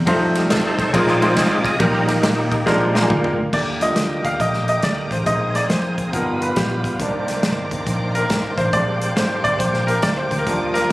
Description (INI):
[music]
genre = uptempo gospel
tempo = 138 BPM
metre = 4/4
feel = swing 66% on 8ths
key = Eb major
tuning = A4 = 441 Hz
[part]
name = fingered electric bass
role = bass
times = 0.0-10.8 s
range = G1 to Bb2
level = -24 LUFS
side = equal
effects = none
[part]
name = bright upright piano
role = accompaniment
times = 0.1-10.9 s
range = Bb2 to Bb5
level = -21 LUFS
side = equal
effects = none
[part]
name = overdriven tonewheel organ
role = sustained chords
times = 0.1-10.9 s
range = D3 to Eb5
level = -22 LUFS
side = equal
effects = slow rotary speaker, chorus vibrato
[part]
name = natural country drum kit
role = drums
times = 0.1-10.8 s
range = crash cymbal, hi-hat, kick drum, ride cymbal, snare drum, toms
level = -24 LUFS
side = equal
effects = none
[part]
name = clear studio string section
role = sustained chords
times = 3.5-10.9 s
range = D5 to Eb6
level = -32 LUFS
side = equal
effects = none
[sound]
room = moderate scoring stage reverb, RT60 1.5 s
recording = recorded on a phone in the room, club reverb, compression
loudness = -16 LUFS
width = side -18 dB against mid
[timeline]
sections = 0.0-3.5 A section; 3.5-10.9 B section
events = tonewheel organ solo 0.0-3.5; drum fill 2.7-3.5; upright piano fill 2.7-3.5; upright piano solo 3.5-10.9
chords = 0.1 F7; 0.9 Bb9sus4; 1.8 Eb/Bb; 2.7 Bb7; 3.5 Ebmaj7; 5.3 Bb9sus4; 6.1 G7alt; 7.0 Cm9; 8.7 Bb13